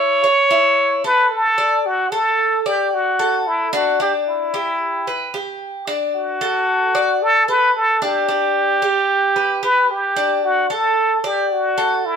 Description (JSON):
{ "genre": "latin", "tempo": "112 BPM", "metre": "4/4", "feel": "straight", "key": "D major", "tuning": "A4 = 444 Hz", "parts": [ { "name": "trumpet with plunger mute", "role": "melody", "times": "0.0-12.2 s", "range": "E4 to C#5", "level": "-16 LUFS", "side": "equal", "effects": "none" }, { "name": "Cuban tres", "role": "arpeggios", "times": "0.0-12.2 s", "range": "D4 to D5", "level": "-21 LUFS", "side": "left 1 dB", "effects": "none" } ], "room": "moderate stone room reverb, RT60 1.0 s", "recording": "band playing live in one room", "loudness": "-15 LUFS", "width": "side -6 dB against mid", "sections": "0.0-1.9 A section; 1.9-12.2 B section", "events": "none", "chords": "0.0 A; 1.9 D; 4.0 G6; 6.1 D; 8.3 G; 10.4 D" }